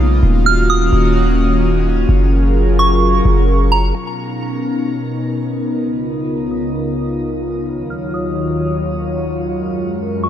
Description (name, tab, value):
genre	hip hop, atmospheric cloud-rap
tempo	129 BPM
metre	4/4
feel	half-time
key	B lydian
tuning	A4 = 440 Hz
part	soft synth bell	melody	0.0-10.3 s	A#5 to E#6	-21 LUFS	right 4 dB	chorus, phaser, low-pass filter, ping-pong delay
part	airy breathy pad	sustained chords	0.0-10.3 s	C#2 to C#5	-17 LUFS	left 1 dB	chorus, low-pass filter
part	warm 808-style bass	bass	0.0-3.9 s	D#1 to B1	-14 LUFS	equal	none
room	light reverb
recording	none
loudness	-14 LUFS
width	side -10 dB against mid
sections	0.0-4.0 A section; 4.0-10.3 B section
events	filter sweep 4.0-10.3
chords	0.2 D#m7; 2.1 F#maj7; 4.0 Bmaj9; 5.8 C#13; 7.7 D#m7; 9.5 F#maj7